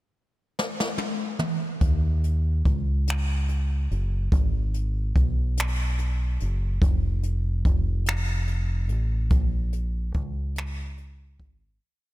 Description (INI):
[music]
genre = slow six-eight R&B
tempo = 48 BPM (dotted quarters)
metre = 6/8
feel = straight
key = Eb minor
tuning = A4 = 439 Hz
[part]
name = jazz brush drum kit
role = drums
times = 0.6-11.6 s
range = finger snaps, hi-hat, kick drum, snare drum, toms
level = -25 LUFS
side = equal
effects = none
[part]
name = deep dub fingered electric bass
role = bass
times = 1.8-11.8 s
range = F1 to Eb2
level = -24 LUFS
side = equal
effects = none
[sound]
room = little or no reverb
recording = none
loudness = -23 LUFS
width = side -16 dB against mid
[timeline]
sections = 0.0-1.8 pickup bar; 1.8-11.8 verse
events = drum fill 0.6-1.8; fade-out 9.3-11.8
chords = none